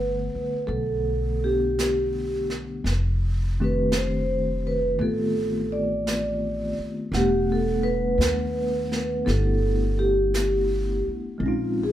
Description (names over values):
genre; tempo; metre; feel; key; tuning
jazz ballad; 56 BPM; 4/4; swing 69% on 8ths; unclear; A4 = 440 Hz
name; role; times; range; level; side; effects
vibraphone with soft mallets; melody; 0.0-11.9 s; F4 to D5; -25 LUFS; right 1 dB; none
tine electric piano; accompaniment; 0.0-11.9 s; D3 to F#5; -28 LUFS; left 2 dB; medium tremolo
upright bass; bass; 0.0-11.9 s; E1 to Eb2; -27 LUFS; equal; none
jazz brush drum kit; drums; 0.7-11.9 s; brushed snare drum, hi-hat, snare drum; -32 LUFS; right 1 dB; none
room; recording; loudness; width
light reverb; band playing live in one room; -22 LUFS; side -12 dB against mid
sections
0.0-11.9 A section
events
none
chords
0.0 Gmaj7; 2.8 F13; 7.1 Em11; 11.4 Bbm11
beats
0.69 1.76 | 2.84 3.91 4.98 6.05 | 7.13 8.20 9.26 10.33 | 11.40